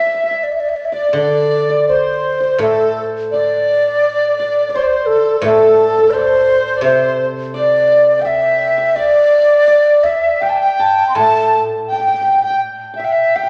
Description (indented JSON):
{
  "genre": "chinese traditional, Chinese chamber ensemble",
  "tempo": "83 BPM",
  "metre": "4/4",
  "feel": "rubato",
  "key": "A yu mode",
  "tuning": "A4 = 441 Hz",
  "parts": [
    { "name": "breathy mellow xiao", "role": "melody", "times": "0.0-13.5 s", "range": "A4 to C6", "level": "-16 LUFS", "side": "equal", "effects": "none" },
    { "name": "hammered dulcimer", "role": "second line", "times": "0.0-13.5 s", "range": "A4 to A5", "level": "-24 LUFS", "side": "equal", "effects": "none" },
    { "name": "mellow large dizi", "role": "second line", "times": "0.0-13.5 s", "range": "A4 to A5", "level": "-21 LUFS", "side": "equal", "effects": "none" },
    { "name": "guzheng", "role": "accompaniment", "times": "1.1-13.3 s", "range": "A2 to D3", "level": "-21 LUFS", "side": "equal", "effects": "none" }
  ],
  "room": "wet recital hall reverb, RT60 1.6 s",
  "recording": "none",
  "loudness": "-14 LUFS",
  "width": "mono",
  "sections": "0.0-13.5 A section",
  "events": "none",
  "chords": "none",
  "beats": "0.43 1.16 1.88 | 2.60 3.32 4.04 4.75 | 5.45 6.14 6.84 7.54 | 8.25 8.96 9.69 10.43 | 11.17 11.90 12.64 13.36"
}